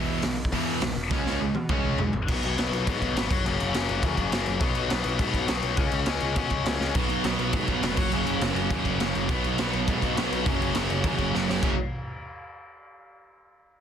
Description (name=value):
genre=punk rock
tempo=206 BPM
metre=4/4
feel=straight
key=unclear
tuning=A4 = 439 Hz
part: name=crunchy overdriven guitar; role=riff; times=0.0-2.1, 7.0-11.7 s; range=E2 to C#4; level=-30 LUFS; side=right 17 dB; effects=none
part: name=tight distorted guitar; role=riff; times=0.0-11.7 s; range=E2 to C#4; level=-28 LUFS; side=left 6 dB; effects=distortion
part: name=fuzz picked electric bass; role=bass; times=0.0-11.8 s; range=E1 to B2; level=-32 LUFS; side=equal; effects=overdrive
part: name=raw garage drum kit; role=drums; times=0.2-11.7 s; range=crash cymbal, hi-hat, kick drum, snare drum, toms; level=-28 LUFS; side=equal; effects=none
room=little or no reverb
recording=dense, heavily limited modern master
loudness=-23 LUFS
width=side -8 dB against mid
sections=0.0-2.3 A section; 2.3-11.6 B section; 11.6-12.8 C section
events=drum fill 1.1-2.3, 6.8, 11.3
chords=0.0 E5; 1.1 C#5; 2.3 B5; 3.3 F#5; 4.6 B5; 5.8 C#5; 7.0 B5; 8.0 F#5; 9.3 B5; 10.4 F#5